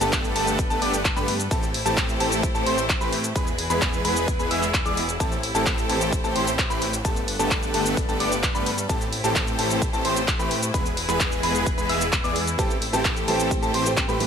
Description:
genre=EDM, festival progressive house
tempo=130 BPM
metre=4/4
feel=straight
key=A minor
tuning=A4 = 442 Hz
part: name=clear studio string section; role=sustained chords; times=0.0-14.3 s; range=E3 to C5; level=-30 LUFS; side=left 1 dB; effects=sidechain pumping
part: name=clear baby grand piano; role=arpeggios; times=0.0-14.2 s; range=A5 to E6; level=-30 LUFS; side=left 1 dB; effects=sidechain pumping, tape echo
part: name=supersaw chords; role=riff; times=0.0-14.2 s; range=D3 to E5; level=-26 LUFS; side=right 1 dB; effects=sidechain pumping, tape echo
part: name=fat analog bass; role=bass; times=0.0-14.3 s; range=E1 to A2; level=-32 LUFS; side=equal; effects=sidechain pumping
part: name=big-room dance drum kit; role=drums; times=0.0-14.3 s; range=finger snaps, handclaps, hi-hat, ride cymbal, shaker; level=-27 LUFS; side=equal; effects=none
part: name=electronic kick drum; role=drums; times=0.1-14.1 s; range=none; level=-26 LUFS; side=equal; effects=none
part: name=fingerpicked steel-string acoustic guitar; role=accompaniment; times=12.6-14.3 s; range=E3 to G4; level=-28 LUFS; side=right 5 dB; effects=sidechain pumping, tape echo
room=light reverb, digital ambience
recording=none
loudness=-20 LUFS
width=side -7 dB against mid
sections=0.0-14.3 A section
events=none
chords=0.0 Gadd9; 1.5 Am7; 3.4 E; 5.2 Am7; 7.0 Gadd9; 8.9 Am7; 10.7 E; 12.6 Am7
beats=0.13 0.59 1.05 | 1.51 1.97 2.43 2.90 | 3.36 3.82 4.28 4.74 | 5.20 5.66 6.13 6.59 | 7.05 7.51 7.97 8.43 | 8.89 9.36 9.82 10.28 | 10.74 11.20 11.66 12.13 | 12.59 13.05 13.51 13.97

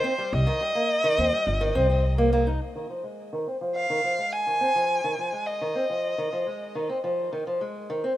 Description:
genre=folktronica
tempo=105 BPM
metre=4/4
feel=straight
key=F minor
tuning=A4 = 440 Hz
part: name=warm violin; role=melody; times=0.0-6.9 s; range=C5 to Ab5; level=-26 LUFS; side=equal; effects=ping-pong delay
part: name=fingerpicked acoustic archtop guitar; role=arpeggios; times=0.0-8.1 s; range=Eb3 to Eb4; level=-27 LUFS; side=equal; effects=low-pass filter, ping-pong delay
part: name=upright bass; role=bass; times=0.3-2.6 s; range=G1 to Eb2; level=-24 LUFS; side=equal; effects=none
room=moderate studio reverb, RT60 0.6 s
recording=rough home demo mix, lossy compression artefacts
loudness=-23 LUFS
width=side -14 dB against mid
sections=0.0-2.6 A section; 2.6-8.2 B section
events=filter sweep on steel-string acoustic guitar 2.6-8.2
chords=0.0 Cm7; 2.6 Fm7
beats=| 0.33 0.90 1.47 2.04 | 2.61 3.19 3.76 4.33 | 4.90 5.47 6.04 6.61 | 7.18 7.76

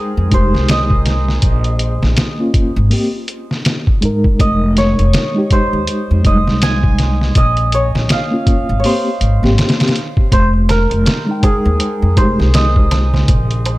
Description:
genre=trip hop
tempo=81 BPM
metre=4/4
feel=swing 59% on 16ths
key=F minor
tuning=A4 = 436 Hz
part: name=santur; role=melody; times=0.0-13.8 s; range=Ab4 to Ab5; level=-20 LUFS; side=right 1 dB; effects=tape echo
part: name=mellow reed electric piano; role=accompaniment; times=0.0-13.3 s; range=G3 to G5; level=-19 LUFS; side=equal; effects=tremolo, tape echo
part: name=upright bass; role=bass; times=0.2-13.8 s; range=F1 to Ab2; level=-14 LUFS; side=equal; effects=none
part: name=trip hop sampler-style drum kit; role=drums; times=0.3-13.8 s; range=hi-hat, kick drum, snare drum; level=-15 LUFS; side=equal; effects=none
part: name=darbuka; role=percussion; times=10.3-13.8 s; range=none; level=-25 LUFS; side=right 2 dB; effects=none
room=small room reverb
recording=none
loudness=-11 LUFS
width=side -18 dB against mid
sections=0.0-13.8 A section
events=none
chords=0.0 Fm7; 1.4 Bbm; 2.9 Abmaj7; 4.4 Fm7; 7.4 Bbm; 8.8 Abmaj7; 10.3 Fm7; 13.3 N.C.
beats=0.69 | 1.43 2.17 2.91 3.65 | 4.39 5.13 5.87 6.61 | 7.35 8.10 8.84 9.58 | 10.32 11.06 11.80 12.54 | 13.28

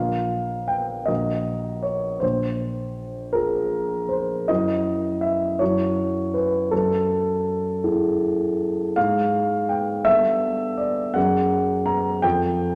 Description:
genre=classical, impressionist solo piano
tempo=54 BPM (dotted quarters)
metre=6/8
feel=rubato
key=unclear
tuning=A4 = 444 Hz
part: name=warm concert grand piano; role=solo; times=0.0-12.8 s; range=Bb1 to Bb5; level=-23 LUFS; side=equal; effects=none
room=wet recital hall reverb, RT60 1.7 s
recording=none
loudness=-23 LUFS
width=mono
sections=0.0-12.8 A section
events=none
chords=0.0 Bb5; 1.1 Gb6/Bb; 2.2 Fmadd11/Bb; 4.5 Esus2/F#; 6.7 A5/Gb; 9.0 Ab5; 10.1 Gadd9; 11.2 Gbsus2; 12.2 Fadd9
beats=1.09 | 2.22 3.35 | 4.49 5.60 | 6.71 7.83 | 8.96 10.05 | 11.16 12.24

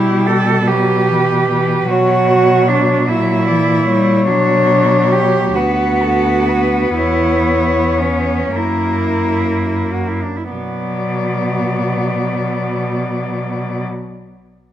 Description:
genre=classical, lyrical piece for cello ensemble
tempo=29-52 BPM (dotted quarters)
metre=6/8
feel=rubato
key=B minor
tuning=A4 = 440 Hz
part: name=clear cello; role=melody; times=0.0-13.8 s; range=G4 to E5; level=-20 LUFS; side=left 5 dB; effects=none
part: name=clear cello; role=second line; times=0.0-13.8 s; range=B3 to A4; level=-17 LUFS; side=right 5 dB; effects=none
part: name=rich cello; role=accompaniment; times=0.0-13.8 s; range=E3 to B3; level=-20 LUFS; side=left 3 dB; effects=none
part: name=rich cello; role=bass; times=0.0-13.8 s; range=D2 to B2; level=-19 LUFS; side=right 1 dB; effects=none
room=moderate recital hall reverb, RT60 1.6 s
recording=faint mains hum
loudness=-13 LUFS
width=side -11 dB against mid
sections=0.0-10.5 A section; 10.5-14.4 B section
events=slowing down 3.1-10.5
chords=0.0 Em/B; 1.9 F#7/B; 4.3 Bm; 5.6 Bm/D; 7.0 C#m7/E; 8.6 F#7; 10.5 Bm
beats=0.68 | 1.89 3.08 | 4.26 5.56 | 6.97 8.56 | 10.51 12.45

